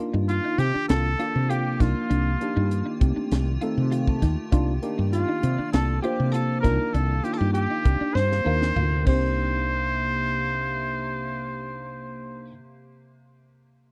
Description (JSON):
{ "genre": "electric jazz fusion", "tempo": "99 BPM", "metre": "4/4", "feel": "straight", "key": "C dorian", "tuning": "A4 = 440 Hz", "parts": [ { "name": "tine electric piano", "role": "accompaniment", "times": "0.0-12.6 s", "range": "A3 to A5", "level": "-33 LUFS", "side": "equal", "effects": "analog chorus" }, { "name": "icy glass pad", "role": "sustained chords", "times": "0.3-12.5 s", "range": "C3 to D5", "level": "-37 LUFS", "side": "equal", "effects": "chorus, built-in reverb" }, { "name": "clean electric guitar", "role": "stabs", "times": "0.1-9.4 s", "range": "C4 to F4", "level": "-36 LUFS", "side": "equal", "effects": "ensemble chorus" }, { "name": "woody fretless electric bass", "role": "bass", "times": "0.1-12.5 s", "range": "C2 to C3", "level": "-27 LUFS", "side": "equal", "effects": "none" }, { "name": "trumpet with straight mute", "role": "melody", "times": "0.3-12.6 s", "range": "F4 to C5", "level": "-31 LUFS", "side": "equal", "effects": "none" }, { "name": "hollow-body jazz guitar", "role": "second line", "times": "0.3-12.5 s", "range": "F4 to C5", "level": "-34 LUFS", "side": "equal", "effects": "none" }, { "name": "tight funk drum kit", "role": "drums", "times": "0.3-9.2 s", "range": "crash cymbal, hi-hat, kick drum, snare drum, toms", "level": "-26 LUFS", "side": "equal", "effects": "none" } ], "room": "little or no reverb", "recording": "dry, close 1970s-style studio recording", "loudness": "-24 LUFS", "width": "mono", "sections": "0.0-9.4 A section; 9.4-11.8 B section", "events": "tine electric piano fill 3.6-4.5; drum fill 8.2-9.4", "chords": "0.0 Cm11; 0.9 Gm9/C; 1.8 Cm11; 3.0 F9/C; 4.5 Cm11; 5.7 Gm9/C; 6.6 Cm11; 9.1 Cm9", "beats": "0.28 0.89 1.49 | 2.10 2.71 3.31 3.92 | 4.52 5.13 5.74 6.34 | 6.95 7.55 8.16 8.77 | 9.37 9.98 10.58 11.19" }